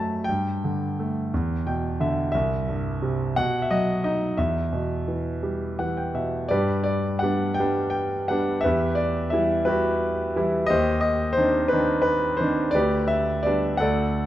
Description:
classical, lyrical solo piano; 58 BPM (dotted quarters); 6/8; rubato; E minor, G major from 6.5 s; A4 = 441 Hz
clear concert grand piano; solo; 0.0-14.3 s; C2 to B5; -22 LUFS; equal
light reverb; dark, warm production, nothing above 11.0 kHz; -22 LUFS; side -13 dB against mid
0.0-6.5 A section; 6.5-14.3 B section
grand piano fill 1.3-2.3, 5.4-6.5
0.3 Gsus2; 1.3 E5; 2.3 C; 3.4 B; 4.4 Em; 6.5 G; 8.6 Emadd9; 10.7 Cmadd9/Eb; 12.7 G/D

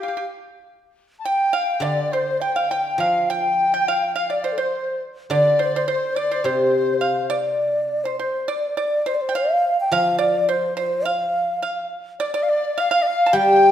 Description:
chinese traditional, Chinese chamber ensemble; 105 BPM; 2/4; rubato; A4 = 440 Hz
mellow low xiao; melody; 0.0-13.7 s; G4 to G5; -21 LUFS; equal
pipa; second line; 0.0-13.7 s; G4 to A5; -26 LUFS; right 6 dB
reedy large dizi; second line; 0.0-7.3, 12.2-13.7 s; C5 to A5; -24 LUFS; left 3 dB
guzheng; accompaniment; 1.8-13.7 s; C3 to G3; -24 LUFS; equal
wet scoring stage reverb, RT60 1.5 s; -18 LUFS; side -10 dB against mid
0.0-7.6 A section; 7.6-13.7 B section

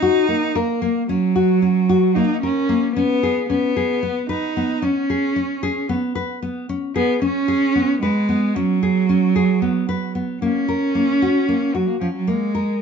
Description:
contemporary instrumental, contemporary; 225 BPM (eighths); 7/8; straight; A4 = 440 Hz
rich cello; melody; 0.0-12.8 s; F3 to Eb4; -19 LUFS; right 3 dB
nylon-string guitar; arpeggios; 0.0-12.8 s; Bb3 to Cb5; -21 LUFS; left 5 dB
moderate studio reverb, RT60 0.7 s; dark, warm production, nothing above 7.6 kHz; -17 LUFS; side -6 dB against mid
0.0-10.4 A section; 10.4-12.8 B section
0.0 Ebm7; 3.0 Db7sus4; 10.4 Gb; 12.3 N.C.

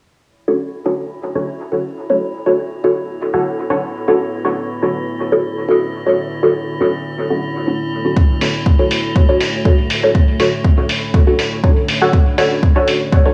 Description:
dub techno; 121 BPM; 4/4; straight; B minor; A4 = 441 Hz
deep dark ambient pad; sustained chords; 3.1-13.3 s; A3 to C#5; -28 LUFS; equal; chorus, built-in reverb, sidechain pumping
metallic inharmonic drone; texture; 1.2-13.3 s; E4; -29 LUFS; equal; chorus, built-in reverb, phaser, sidechain pumping
filtered dub chord stab; stabs; 0.5-13.3 s; D4 to C#5; -19 LUFS; equal; phaser, sidechain pumping, dub echo
electronic kick drum; drums; 8.2-13.2 s; -14 LUFS; equal; overdrive
electronic hi-hat; drums; 8.4-13.0 s; -24 LUFS; equal; low-pass filter on hats, low-pass filter on room
moderate spring reverb, RT60 1.5 s, digital ambience; echo-heavy mix, small room ambience; -16 LUFS; mono
0.2-13.3 A section
filter sweep on synth stab 0.2-13.3; filter sweep on ambient pad 0.2-13.3
0.2 Bm7

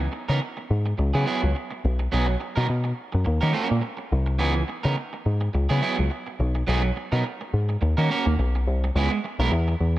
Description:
disco; 105 BPM; 4/4; swing 56% on 16ths; C# dorian; A4 = 440 Hz
electric guitar at the edge of break-up; accompaniment; 0.0-10.0 s; E3 to A#4; -27 LUFS; right 4 dB; tube saturation, spring reverb
picked electric bass; bass; 0.0-10.0 s; B1 to D#3; -22 LUFS; left 1 dB
little or no reverb; -22 LUFS; side -16 dB against mid
0.0-9.0 A section; 9.0-10.0 B section
0.0 C#m9 (rootless); 1.0 F#9sus4/C#; 1.8 B6; 3.3 D#m7; 4.4 C#m9; 5.5 F#9sus4/C#; 6.4 B6; 7.8 D#m7; 8.4 N.C.; 9.0 C#m7 (rootless)

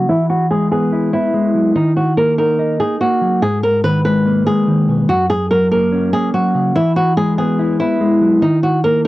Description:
hip hop; 144 BPM; 4/4; half-time; G# minor; A4 = 439 Hz
flamenco guitar; melody; 0.0-9.1 s; D#4 to B4; -16 LUFS; equal; low-pass filter
mellow electric guitar; accompaniment; 0.0-9.1 s; F#2 to D#5; -15 LUFS; equal; low-pass filter
light reverb; dry, gritty hardware recording, cassette tape; -13 LUFS; side -17 dB against mid
0.0-3.4 A section; 3.4-9.1 B section
filter sweep 0.0-3.4
0.1 Eadd9; 1.8 D#m; 3.4 G#madd9; 5.1 F#; 6.8 Eadd9; 8.4 D#m

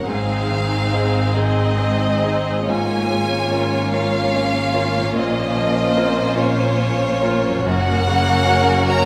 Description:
cinematic; 48 BPM (dotted quarters); 6/8; uneven beats, rubato; Bb minor; A4 = 438 Hz
rich studio violin section; melody; 0.0-9.1 s; Db5 to Bb5; -25 LUFS; equal
rich studio violin section; second line; 0.0-9.1 s; F4 to Db5; -27 LUFS; equal
bright grand piano; accompaniment; 0.0-9.1 s; Gb2 to Bb4; -25 LUFS; equal
rich studio viola section; accompaniment; 0.0-9.1 s; Bb3 to Eb4; -27 LUFS; equal
concert harp; arpeggios; 0.0-9.1 s; Gb2 to Bb4; -32 LUFS; equal
rich studio double bass section; bass; 0.0-9.1 s; Gb1 to Bb1; -28 LUFS; equal
warm symphonic cello section; bass; 0.0-9.1 s; Gb2 to Bb2; -27 LUFS; equal
wet concert hall reverb, RT60 2.1 s; -18 LUFS; mono
0.0-9.1 A section
0.1 Ab6; 2.7 Db6/Ab; 5.2 Bbmadd9; 7.7 Gb

